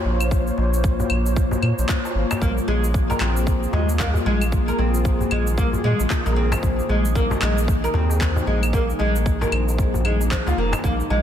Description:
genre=organic downtempo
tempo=114 BPM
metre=4/4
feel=swing 60% on 16ths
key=unclear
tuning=A4 = 439 Hz
part: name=airy breathy pad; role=sustained chords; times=0.0-11.2 s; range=Eb3 to Db5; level=-26 LUFS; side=left 1 dB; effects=chorus, sidechain pumping
part: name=darbuka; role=percussion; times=0.0-11.2 s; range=none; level=-31 LUFS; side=left 1 dB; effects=none
part: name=quartz singing bowl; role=texture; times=0.0-11.2 s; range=Eb4 to F4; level=-41 LUFS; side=right 2 dB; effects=none
part: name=round analog bass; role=bass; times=0.1-11.2 s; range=F1 to Bb2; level=-22 LUFS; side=equal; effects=sidechain pumping
part: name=electronic claves, cabasa and handclaps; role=drums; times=0.2-11.1 s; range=none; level=-30 LUFS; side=equal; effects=overdrive
part: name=electronic kick drum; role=drums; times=0.3-11.0 s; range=none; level=-23 LUFS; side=equal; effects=overdrive
part: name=oud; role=arpeggios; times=2.4-11.2 s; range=F3 to Bb4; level=-25 LUFS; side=left 1 dB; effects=ping-pong delay
room=light reverb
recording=dense, heavily limited modern master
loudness=-18 LUFS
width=side -10 dB against mid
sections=0.0-11.2 A section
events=none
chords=0.0 Bbm; 2.4 Ebsus4/Bb

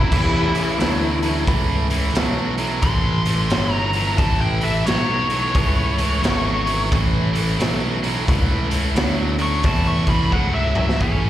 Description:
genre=blues rock power trio and southern rock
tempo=88 BPM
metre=4/4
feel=swing 63% on 8ths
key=A major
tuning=A4 = 438 Hz
part: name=nasal lead guitar with a parked wah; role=melody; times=0.0-11.3 s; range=C#4 to C#6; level=-24 LUFS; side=left 1 dB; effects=overdrive, slapback echo
part: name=overdriven tonewheel organ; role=sustained chords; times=0.0-11.3 s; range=E3 to A4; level=-30 LUFS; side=right 4 dB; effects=slow rotary speaker, chorus vibrato
part: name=tight distorted guitar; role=riff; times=0.0-11.3 s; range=A2 to E4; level=-24 LUFS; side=right 1 dB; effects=distortion, slapback echo
part: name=modern bright picked electric bass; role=bass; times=0.0-11.3 s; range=G1 to E2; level=-22 LUFS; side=equal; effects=none
part: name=raw garage drum kit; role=drums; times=0.1-11.2 s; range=crash cymbal, hi-hat, kick drum, snare drum, toms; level=-21 LUFS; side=equal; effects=none
part: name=biting lead guitar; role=second line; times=11.0-11.3 s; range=A4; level=-30 LUFS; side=right 4 dB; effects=overdrive, slapback echo
room=light reverb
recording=live gig heard through the venue's PA, recital hall reverb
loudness=-17 LUFS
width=side -12 dB against mid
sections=0.0-11.0 A section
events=lead electric guitar solo 0.0-11.0; drum fill 10.3-11.0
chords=0.0 A

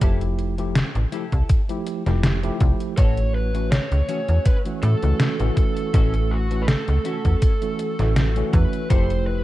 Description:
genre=vaporwave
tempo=81 BPM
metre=4/4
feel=swing 54% on 16ths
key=unclear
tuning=A4 = 438 Hz
part: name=tine electric piano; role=accompaniment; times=0.0-9.4 s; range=E3 to G4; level=-28 LUFS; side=equal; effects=slow stereo tremolo, wide subtle chorus
part: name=clean electric guitar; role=riff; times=0.0-9.3 s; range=C#4 to A4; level=-38 LUFS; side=left 4 dB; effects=analog chorus, low-pass filter, tape echo
part: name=slap-like FM bass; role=bass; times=0.0-9.4 s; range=F1 to A2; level=-21 LUFS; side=equal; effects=none
part: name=detuned 8-bit digital drum machine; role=drums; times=0.0-9.2 s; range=hi-hat, snare drum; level=-24 LUFS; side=equal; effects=none
part: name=electronic kick drum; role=drums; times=0.0-9.1 s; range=none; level=-19 LUFS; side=equal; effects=none
part: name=lead guitar through a small cranked amp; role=melody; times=3.0-9.4 s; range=F#4 to C#5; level=-28 LUFS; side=right 3 dB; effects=overdrive, tape echo
part: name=warbly tape-like pad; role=sustained chords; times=3.0-9.4 s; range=A3 to E6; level=-36 LUFS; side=right 2 dB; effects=chorus, built-in reverb
room=digital ambience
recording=cassette tape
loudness=-18 LUFS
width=side -16 dB against mid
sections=0.0-9.4 A section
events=none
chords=0.0 Fmaj9; 3.0 A6; 8.9 Fmaj9

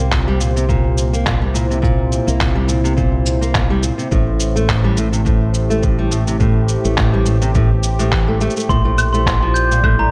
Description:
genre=folktronica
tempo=105 BPM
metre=4/4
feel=swing 56% on 16ths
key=C mixolydian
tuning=A4 = 439 Hz
part: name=warm analog pad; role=sustained chords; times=0.0-10.1 s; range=A2 to D5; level=-26 LUFS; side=equal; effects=subtle chorus
part: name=fingerpicked steel-string acoustic guitar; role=arpeggios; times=0.0-10.1 s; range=A2 to Bb3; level=-22 LUFS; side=equal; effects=vintage 12-bit sampler grit, digital delay
part: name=fingered electric bass with an envelope filter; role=bass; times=0.0-10.1 s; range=A1 to C2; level=-20 LUFS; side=equal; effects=none
part: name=electronic handclaps, cabasa and claves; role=drums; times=0.1-10.0 s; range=none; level=-25 LUFS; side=equal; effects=none
part: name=electronic kick drum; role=drums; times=0.1-10.0 s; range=none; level=-21 LUFS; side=equal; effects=none
part: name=glockenspiel with hard plastic mallets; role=second line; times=8.7-10.1 s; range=Bb5 to G6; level=-20 LUFS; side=equal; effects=digital delay
room=light reverb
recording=none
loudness=-16 LUFS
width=mono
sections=0.0-10.1 A section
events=none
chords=0.0 C7; 4.1 Am7; 8.7 Bbmaj7

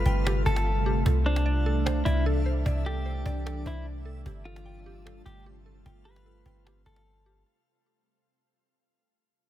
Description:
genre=hip hop, atmospheric cloud-rap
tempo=150 BPM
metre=4/4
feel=half-time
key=unclear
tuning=A4 = 440 Hz
part: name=clean electric guitar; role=melody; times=0.0-7.4 s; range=D4 to B4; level=-34 LUFS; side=left 1 dB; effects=digital delay
part: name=ethereal airy pad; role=sustained chords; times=0.0-7.4 s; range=C3 to F4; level=-34 LUFS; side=right 1 dB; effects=ensemble chorus, built-in reverb
part: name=mallet-like synth pluck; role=arpeggios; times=0.0-7.5 s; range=G4 to G5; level=-38 LUFS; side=right 3 dB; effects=chorus, digital delay
part: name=warm 808-style bass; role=bass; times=0.0-7.4 s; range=G1 to C2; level=-27 LUFS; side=equal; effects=none
part: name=backwards swelling texture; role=texture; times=0.0-7.4 s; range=C4 to F5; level=-43 LUFS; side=right 1 dB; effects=built-in reverb
part: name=cajon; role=drums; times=0.1-7.4 s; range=none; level=-31 LUFS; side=equal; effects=none
room=digital ambience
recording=none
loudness=-24 LUFS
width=side -12 dB against mid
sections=0.0-7.5 A section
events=fade-out 0.0-7.5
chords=0.0 G9sus4; 1.1 C69; 4.3 G9sus4

